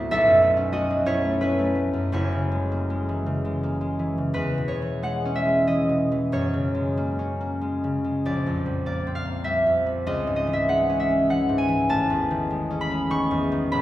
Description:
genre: classical, solo harp piece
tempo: 78-101 BPM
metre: 3/4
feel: rubato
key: E lydian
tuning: A4 = 438 Hz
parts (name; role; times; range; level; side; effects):
- concert harp; solo; 0.0-13.8 s; F#1 to C#6; -21 LUFS; equal; none
room: wet recital hall reverb, RT60 1.3 s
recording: recorded in a church or concert hall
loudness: -21 LUFS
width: side -14 dB against mid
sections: 0.0-4.4 A section; 4.4-13.8 B section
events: none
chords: 0.1 B11; 2.1 F#9; 4.4 E6; 6.3 F#add9; 8.2 A#69; 10.1 C#madd9; 11.9 Amaj7#11

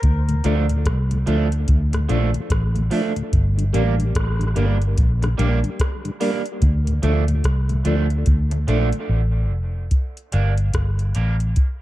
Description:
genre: dub reggae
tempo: 73 BPM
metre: 4/4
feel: swing 61% on 16ths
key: D minor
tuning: A4 = 440 Hz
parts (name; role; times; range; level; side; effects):
- vintage muted fingered electric bass; bass; 0.0-11.5 s; F1 to D2; -19 LUFS; equal; none
- soft vintage rhythm box; drums; 0.0-11.8 s; hi-hat, kick drum, rim click; -21 LUFS; equal; none
- mellow tonewheel organ; accompaniment; 0.3-9.0 s; D2 to D4; -28 LUFS; left 3 dB; slow rotary speaker, high-pass filter, dub echo
- electric guitar at the edge of break-up; accompaniment; 0.4-11.4 s; F3 to D4; -27 LUFS; right 6 dB; wide subtle chorus, high-pass filter, dub echo
room: digital ambience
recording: dark, warm production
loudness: -18 LUFS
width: side -15 dB against mid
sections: 0.0-9.9 A section; 9.9-11.8 B section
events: filter sweep 6.6-11.8; break 9.1-9.9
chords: 0.0 Dm; 3.3 Gm; 6.6 Dm; 9.9 Gm

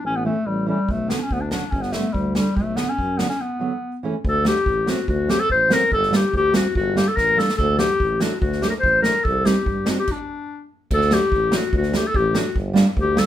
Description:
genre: klezmer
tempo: 144 BPM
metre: 2/4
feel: straight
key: B minor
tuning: A4 = 440 Hz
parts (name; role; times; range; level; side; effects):
- mellow clarinet; melody; 0.0-13.3 s; G3 to C5; -20 LUFS; left 2 dB; none
- mellow tuba; bass; 0.0-13.2 s; G1 to G2; -26 LUFS; equal; none
- nylon-string guitar; accompaniment; 0.2-13.3 s; D3 to Eb4; -23 LUFS; right 3 dB; none
- street-band drum kit; drums; 0.9-13.3 s; crash cymbal, kick drum, snare drum; -25 LUFS; equal; none
room: moderate small room reverb, RT60 0.5 s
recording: minimal, uncompressed stereo recording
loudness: -18 LUFS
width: side -11 dB against mid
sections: 0.0-4.2 A section; 4.2-10.9 B section; 10.9-13.3 B section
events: break 3.4-4.2; drum fill 7.2-7.6; stop 10.1-10.9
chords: 0.0 A; 0.9 Bm; 1.7 G5; 2.6 Bm; 3.8 A; 4.2 D; 5.9 Gm; 7.6 D; 9.3 Cm; 10.1 N.C.; 10.9 D; 12.6 Gm

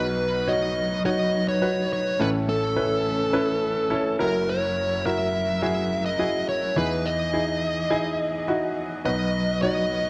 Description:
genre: pop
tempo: 105 BPM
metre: 4/4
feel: straight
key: B major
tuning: A4 = 440 Hz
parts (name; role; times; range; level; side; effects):
- dark smooth lead guitar; melody; 0.0-10.1 s; A4 to E5; -28 LUFS; equal; overdrive
- bright grand piano; accompaniment; 0.0-10.1 s; F#1 to C#5; -28 LUFS; equal; none
- bright studio string section; sustained chords; 0.0-10.1 s; E3 to D#5; -33 LUFS; equal; none
room: moderate echo chamber reverb, RT60 1.8 s, small room ambience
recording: dark, warm production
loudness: -24 LUFS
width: mono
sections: 0.0-10.1 A section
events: none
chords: 0.0 B; 2.2 A; 4.2 F#7; 6.8 Emaj7; 9.1 B

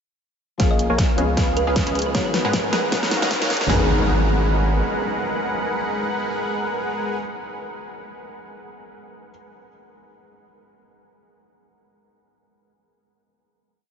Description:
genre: future bass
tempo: 155 BPM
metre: 4/4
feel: swing 56% on 16ths, half-time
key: G# dorian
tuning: A4 = 440 Hz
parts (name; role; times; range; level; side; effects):
- thumb-piano-like synth pluck; melody; 0.6-2.4 s; B4 to E#5; -31 LUFS; right 2 dB; none
- felt-muted upright piano; accompaniment; 0.6-9.3 s; E#3 to A#4; -28 LUFS; left 4 dB; wide subtle chorus, sidechain pumping, diffuse ambient delay
- supersaw stab; riff; 0.6-7.2 s; G#3 to G#5; -24 LUFS; equal; sidechain pumping, low-pass filter, diffuse ambient delay
- saturated sub bass; bass; 0.6-4.8 s; D#1 to G#2; -24 LUFS; equal; sidechain pumping
- big-room dance drum kit; drums; 0.6-3.8 s; kick drum, snare drum, toms; -23 LUFS; equal; none
- big-room dance drum kit; drums; 0.6-3.7 s; hi-hat, snare drum; -26 LUFS; equal; none
- riser and impact; sound effects; 2.1-7.2 s; none; -31 LUFS; equal; none
room: wet huge ambient reverb, RT60 8.4 s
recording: dreamy mix soaked in reverb, high-pass filter, nothing above 7.8 kHz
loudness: -19 LUFS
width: side -7 dB against mid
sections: 0.6-3.7 build; 3.7-6.8 final chord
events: build-up 0.6-3.7; drum fill 0.6-3.7; filter sweep on supersaw synth 0.6-3.7; filter sweep 0.6-3.7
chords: 0.6 A#m7; 1.2 C#7; 2.1 G#m7; 2.9 D#m7; 3.7 G#m7

